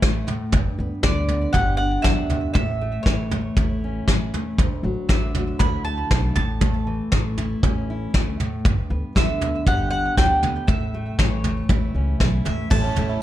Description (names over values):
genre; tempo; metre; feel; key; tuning
indie folk with a building arrangement; 118 BPM; 4/4; straight; unclear; A4 = 437 Hz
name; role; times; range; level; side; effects
fingerpicked steel-string acoustic guitar; accompaniment; 0.0-13.2 s; D2 to G4; -28 LUFS; left 1 dB; none
upright bass; bass; 0.0-13.2 s; G1 to D2; -26 LUFS; equal; none
soft brush drum kit; drums; 0.0-13.1 s; crash cymbal, kick drum, snare drum, toms; -21 LUFS; equal; none
mandolin; melody; 1.0-13.2 s; C#5 to B5; -26 LUFS; right 1 dB; digital delay
picked twelve-string acoustic guitar; accompaniment; 12.7-13.2 s; A2 to C#5; -29 LUFS; left 1 dB; none
bright upright piano; arpeggios; 12.7-13.2 s; A3 to E4; -27 LUFS; right 7 dB; none
room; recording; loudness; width
little or no reverb; dark, warm production; -19 LUFS; side -13 dB against mid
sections
0.0-12.7 A section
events
none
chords
0.0 A; 0.5 G; 2.6 A; 4.6 Dadd9; 6.4 A; 8.6 G; 10.7 A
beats
0.02 | 0.53 1.03 1.54 2.05 | 2.56 3.06 3.57 4.08 | 4.58 5.09 5.60 6.11 | 6.62 7.12 7.63 8.14 | 8.65 9.16 9.66 10.17 | 10.68 11.19 11.70 12.21 | 12.71 13.22